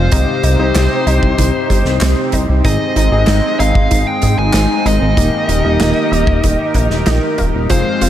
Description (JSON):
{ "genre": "synthwave", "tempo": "95 BPM", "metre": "4/4", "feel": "straight", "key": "unclear", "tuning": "A4 = 440 Hz", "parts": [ { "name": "smooth overdriven lead guitar", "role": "melody", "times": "0.0-8.1 s", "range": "C5 to Ab5", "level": "-19 LUFS", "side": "equal", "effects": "analog delay" }, { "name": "chorused pulse-width pad", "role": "sustained chords", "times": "0.0-8.1 s", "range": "C3 to Bb4", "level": "-19 LUFS", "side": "equal", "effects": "sidechain pumping" }, { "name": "warm electric grand piano", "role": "stabs", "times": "0.0-8.1 s", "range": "Bb3 to F5", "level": "-24 LUFS", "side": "left 2 dB", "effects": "none" }, { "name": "chorused synth bass", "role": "bass", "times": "0.0-8.1 s", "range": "Eb1 to Ab2", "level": "-14 LUFS", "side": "equal", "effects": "tube saturation" }, { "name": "analog pluck", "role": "arpeggios", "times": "0.1-8.1 s", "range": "Eb3 to F4", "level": "-24 LUFS", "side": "right 2 dB", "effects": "none" }, { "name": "kick drum", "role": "drums", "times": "0.1-7.8 s", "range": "none", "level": "-18 LUFS", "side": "equal", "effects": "none" }, { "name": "loose indie drum kit", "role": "drums", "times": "0.1-8.1 s", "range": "handclaps, hi-hat, snare drum", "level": "-22 LUFS", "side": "right 1 dB", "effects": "none" } ], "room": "moderate cathedral reverb, RT60 5.2 s", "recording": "dreamy mix soaked in reverb", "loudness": "-11 LUFS", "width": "side -11 dB against mid", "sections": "0.0-8.1 A section", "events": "none", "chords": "0.1 Cm; 2.6 Ab; 5.2 Eb" }